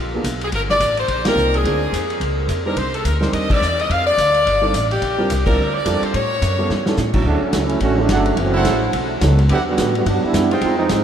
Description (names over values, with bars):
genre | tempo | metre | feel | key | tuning
jazz, big band swing | 214 BPM | 4/4 | swing 60% on 8ths | Bb major, D major from 7.3 s | A4 = 440 Hz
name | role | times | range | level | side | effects
edgy saxophone section | melody | 0.0-6.9 s | F4 to F5 | -20 LUFS | left 1 dB | none
upright bass | bass | 0.0-11.0 s | F#1 to A2 | -21 LUFS | equal | none
warm baby grand piano | accompaniment | 0.1-10.6 s | Gb3 to C5 | -25 LUFS | right 2 dB | none
vintage drum kit | drums | 0.2-11.0 s | crash cymbal, hi-hat, kick drum, ride cymbal, snare drum | -24 LUFS | equal | none
clear trombone section | second line | 7.3-11.0 s | C#3 to G4 | -18 LUFS | right 3 dB | none
warm trumpet section | stabs | 8.1-10.9 s | D4 to G5 | -24 LUFS | right 3 dB | none
room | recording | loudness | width
wet cathedral reverb, RT60 6.1 s | in a vast, echoing space | -15 LUFS | side -8 dB against mid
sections
0.0-7.3 A section; 7.3-11.0 B section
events
band accent 1.2, 3.5, 5.4; drum fill 6.7; trombone section solo 7.3-11.0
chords
0.0 Bb7b9; 0.5 Eb6; 1.7 Dm7b5; 2.2 Dbadd9; 2.8 Cm7; 3.9 F69; 5.0 Bb6; 6.1 A7; 7.3 Dmaj7; 8.4 F#m7b5; 8.9 B7; 9.5 Em9